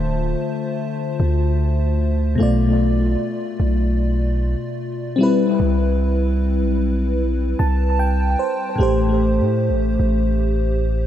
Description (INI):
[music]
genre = contemporary R&B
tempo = 75 BPM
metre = 4/4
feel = straight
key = unclear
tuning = A4 = 441 Hz
[part]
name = FM electric piano with soft pad layer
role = accompaniment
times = 0.0-11.1 s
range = A2 to A5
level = -20 LUFS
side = left 2 dB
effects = chorus, analog delay
[part]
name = long sustained 808-style bass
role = bass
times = 0.0-11.1 s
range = D1 to A2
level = -19 LUFS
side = right 1 dB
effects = none
[sound]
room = light reverb, digital ambience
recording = echo-heavy mix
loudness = -17 LUFS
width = side -11 dB against mid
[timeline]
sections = 0.0-11.1 A section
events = FM electric piano fill 7.2-8.8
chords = 0.0 Dm7; 2.4 Bm7b5; 5.2 Cmaj7; 8.8 Am7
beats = 0.79 1.59 | 2.39 3.19 3.99 4.79 | 5.59 6.39 7.19 7.99 | 8.79 9.59 10.39